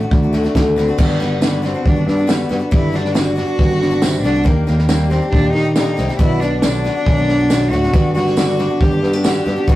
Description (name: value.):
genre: indie folk with a building arrangement.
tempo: 138 BPM.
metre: 4/4.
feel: straight.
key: G major.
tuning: A4 = 438 Hz.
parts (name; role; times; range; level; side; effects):
warm cello; melody; 0.0-9.8 s; A3 to G4; -21 LUFS; right 1 dB; none.
fingerpicked steel-string acoustic guitar; accompaniment; 0.0-9.8 s; F#2 to G4; -21 LUFS; left 1 dB; none.
picked steel-string acoustic guitar; accompaniment; 0.0-9.8 s; B2 to G4; -23 LUFS; left 4 dB; none.
picked electric bass; bass; 0.1-9.8 s; G1 to Eb3; -20 LUFS; equal; none.
compact cocktail drum kit; drums; 0.1-9.8 s; crash cymbal, kick drum, snare drum; -17 LUFS; equal; none.
tambourine; percussion; 1.4-9.3 s; none; -31 LUFS; right 5 dB; none.
room: light reverb.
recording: rough rehearsal-room recording, warm saturation.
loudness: -13 LUFS.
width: side -16 dB against mid.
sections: 1.0-9.8 A section.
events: none.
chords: 0.0 D; 1.0 Gmaj7; 4.5 Ebmaj7; 6.2 Bm; 7.9 Gmaj7.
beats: 0.12 0.55 | 0.99 1.42 1.85 2.29 | 2.72 3.16 3.59 4.03 | 4.46 4.89 5.33 5.76 | 6.20 6.63 7.07 7.50 | 7.93 8.37 8.80 9.24 | 9.67.